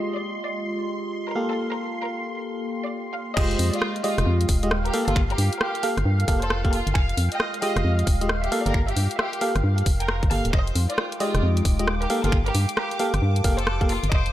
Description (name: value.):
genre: UK garage, two-step garage.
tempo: 134 BPM.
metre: 4/4.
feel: swing 64% on 16ths.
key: unclear.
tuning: A4 = 440 Hz.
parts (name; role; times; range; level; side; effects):
soft string machine; sustained chords; 0.0-14.3 s; F5 to D6; -35 LUFS; equal; phaser, ensemble chorus, sidechain pumping.
FM electric piano; stabs; 0.0-14.0 s; Ab3 to F5; -28 LUFS; equal; chorus, digital delay.
warbly tape-like pad; texture; 0.0-14.3 s; Ab3 to A5; -34 LUFS; equal; chorus, built-in reverb, sidechain pumping.
rich chamber violin section; melody; 0.2-14.3 s; F4 to A5; -31 LUFS; left 1 dB; digital delay.
organ-like FM bass; bass; 3.4-14.3 s; D1 to G2; -23 LUFS; equal; none.
electronic kick drum; drums; 3.4-14.2 s; none; -22 LUFS; equal; none.
garage drum kit; drums; 3.4-14.3 s; crash cymbal, finger snaps, hi-hat, rim click; -29 LUFS; equal; none.
room: light reverb, digital ambience.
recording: low-pass filter.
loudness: -21 LUFS.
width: side -13 dB against mid.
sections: 0.0-3.4 A section; 3.4-14.3 B section.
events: drop 3.4-14.3.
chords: 0.0 Fm9; 1.4 Gm9; 3.4 Fm9; 4.9 Gm9; 7.0 Fm9; 8.5 Gm9; 10.5 Fm9; 12.1 Gm9.